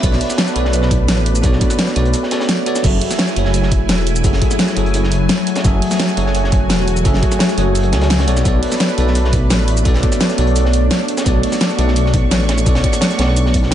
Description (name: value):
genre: liquid drum and bass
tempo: 171 BPM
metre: 4/4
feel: straight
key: F# minor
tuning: A4 = 442 Hz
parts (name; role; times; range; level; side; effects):
- bell-like tine electric piano; accompaniment; 0.0-13.7 s; F#3 to G#5; -20 LUFS; equal; phaser, dub echo
- lush unison pad; sustained chords; 0.0-13.7 s; F#3 to C#6; -22 LUFS; equal; chorus, phaser, sidechain pumping
- dark detuned saw bass; bass; 0.0-13.7 s; E1 to C#2; -16 LUFS; equal; none
- crunchy breakbeat drum kit; drums; 0.0-13.7 s; hi-hat, snare drum; -26 LUFS; right 1 dB; high-pass filter on hats, studio reverb, high-pass filter on snare, high-pass filter on room
- electronic kick drum; drums; 0.0-13.6 s; none; -16 LUFS; equal; overdrive, studio reverb
- pop drum kit; drums; 0.0-13.7 s; crash cymbal, hi-hat, shaker, snare drum; -19 LUFS; equal; studio reverb
room: digital ambience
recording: nothing above 10.5 kHz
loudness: -13 LUFS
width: side -11 dB against mid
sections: 0.0-2.8 A section; 2.8-13.7 A section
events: drop 0.0-2.8, 2.8-13.7; break 2.1-2.8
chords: 0.0 Bm9; 2.8 F#m9; 8.3 Bm9